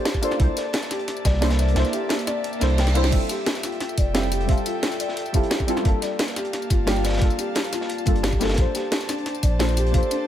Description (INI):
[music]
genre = liquid drum and bass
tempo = 176 BPM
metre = 4/4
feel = straight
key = G dorian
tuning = A4 = 439 Hz
[part]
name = deep mellow chord stab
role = accompaniment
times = 0.0-10.3 s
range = G3 to E5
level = -27 LUFS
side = equal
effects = chorus, digital delay
[part]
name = airy breathy pad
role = sustained chords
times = 0.0-10.3 s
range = Bb3 to A5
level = -32 LUFS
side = right 1 dB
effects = chorus, sidechain pumping
[part]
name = felt-muted upright piano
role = arpeggios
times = 0.0-10.3 s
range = D4 to G5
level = -29 LUFS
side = left 4 dB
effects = ping-pong delay
[part]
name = crunchy breakbeat drum kit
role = drums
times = 0.1-10.2 s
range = hi-hat, snare drum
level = -33 LUFS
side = equal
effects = high-pass filter on hats, high-pass filter on snare, high-pass filter on room
[part]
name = drum and bass drum kit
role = drums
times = 0.1-10.2 s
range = crash cymbal, hi-hat, snare drum, tambourine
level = -27 LUFS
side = equal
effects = none
[part]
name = electronic kick drum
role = drums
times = 0.1-10.0 s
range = none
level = -21 LUFS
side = equal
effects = none
[part]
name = warm sub bass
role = bass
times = 0.4-10.0 s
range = F1 to C2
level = -22 LUFS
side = equal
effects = none
[part]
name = reverse cymbal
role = sound effects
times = 2.6-3.1 s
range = none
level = -35 LUFS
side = right 5 dB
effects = none
[sound]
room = light reverb, small room ambience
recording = none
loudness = -20 LUFS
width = side -11 dB against mid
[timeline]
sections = 0.0-10.3 A section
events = kick drops out 1.8-3.1; reverse cymbal 2.6-3.1; drum fill 2.8-3.1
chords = 0.4 C13; 3.1 Fmaj9; 5.9 Gm9; 8.6 Bbmaj9